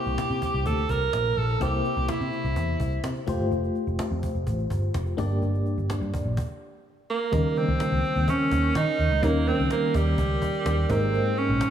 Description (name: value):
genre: 1980s-style pop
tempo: 126 BPM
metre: 4/4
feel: straight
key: C mixolydian, Eb mixolydian from 7.3 s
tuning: A4 = 440 Hz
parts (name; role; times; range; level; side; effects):
- breathy alto saxophone; melody; 0.0-3.0, 7.1-11.7 s; G3 to Bb4; -26 LUFS; right 3 dB; analog delay
- FM electric piano with tremolo; accompaniment; 0.0-11.7 s; G2 to D5; -28 LUFS; left 1 dB; none
- vintage muted picked electric bass; bass; 0.1-11.6 s; F1 to Eb3; -26 LUFS; equal; none
- cajon; drums; 0.1-11.7 s; none; -34 LUFS; equal; none
room: moderate plate reverb, RT60 2.1 s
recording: dreamy mix soaked in reverb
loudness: -23 LUFS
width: side -9 dB against mid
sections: 0.0-7.3 A section; 7.3-11.7 B section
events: stop 6.4-7.3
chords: 0.0 C7; 3.3 Fadd9; 5.2 Gm; 6.4 N.C.; 7.3 Eb7; 10.9 Abadd9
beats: 0.18 0.66 1.13 | 1.61 2.09 2.56 3.04 | 3.52 3.99 4.47 4.94 | 5.42 5.90 6.37 6.85 | 7.33 7.80 8.28 8.75 | 9.23 9.71 10.18 10.66 | 11.13 11.61